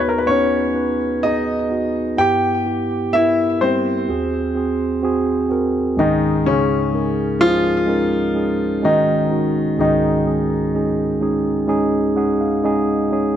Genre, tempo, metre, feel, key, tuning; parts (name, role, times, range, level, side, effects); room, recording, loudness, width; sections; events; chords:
pop; 63 BPM; 4/4; straight; Db major from 6.0 s; A4 = 439 Hz
clear baby grand piano; melody; 0.0-11.7 s; Db3 to G5; -19 LUFS; left 2 dB; ping-pong delay
mellow tine electric piano; accompaniment; 0.0-13.4 s; Db2 to Gb5; -18 LUFS; right 1 dB
light reverb, studio ambience; dark, warm production; -16 LUFS; side -10 dB against mid
0.0-6.0 A section; 6.0-13.4 A section
tine electric piano fill 11.7-13.4
0.0 G#m; 2.2 Em/G; 4.1 G#7; 6.0 Dbsus2